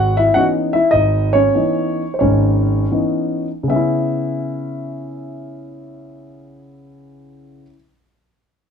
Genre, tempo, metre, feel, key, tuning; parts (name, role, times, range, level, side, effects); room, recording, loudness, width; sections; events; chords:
solo jazz; 75-109 BPM; 4/4; swing 69% on 8ths, rubato; C# minor; A4 = 440 Hz
dark concert grand piano; solo; 0.0-7.7 s; G#1 to F#5; -15 LUFS; equal
light reverb; close, detailed microphones; -15 LUFS; side -7 dB against mid
0.0-3.7 A section; 3.7-6.8 B section
slowing down 0.0-3.7
0.0 C#m9; 3.7 C#m7